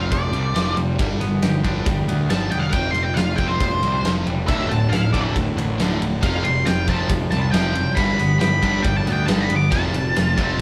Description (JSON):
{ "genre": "quiet-loud alternative rock", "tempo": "138 BPM", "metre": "4/4", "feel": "straight", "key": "unclear", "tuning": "A4 = 441 Hz", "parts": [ { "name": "octave-fuzz lead guitar", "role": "melody", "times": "0.0-10.6 s", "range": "C5 to D6", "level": "-26 LUFS", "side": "equal", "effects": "distortion" }, { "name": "twangy electric guitar", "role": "arpeggios", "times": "0.0-10.6 s", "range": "D2 to G4", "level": "-32 LUFS", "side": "equal", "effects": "harmonic tremolo" }, { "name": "high-gain distorted guitar", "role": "riff", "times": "0.0-10.6 s", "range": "D2 to G3", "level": "-29 LUFS", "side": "equal", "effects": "distortion" }, { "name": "fuzz picked electric bass", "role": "bass", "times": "0.0-10.6 s", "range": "D1 to D2", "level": "-27 LUFS", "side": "equal", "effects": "overdrive" }, { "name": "big rock drum kit", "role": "drums", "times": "0.1-10.5 s", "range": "kick drum, ride cymbal, snare drum", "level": "-25 LUFS", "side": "equal", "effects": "none" }, { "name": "cranked stack guitar", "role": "riff", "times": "4.5-10.6 s", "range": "D2 to G3", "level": "-27 LUFS", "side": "equal", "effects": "overdrive" } ], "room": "moderate studio reverb, RT60 0.8 s", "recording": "band playing live in one room", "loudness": "-20 LUFS", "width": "mono", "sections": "0.0-10.6 A section", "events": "lead electric guitar solo 0.0-10.6", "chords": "0.0 Fsus2; 1.0 G; 2.7 Fsus2; 4.5 Dsus2; 6.2 Fsus2; 8.0 G; 9.7 Fadd9" }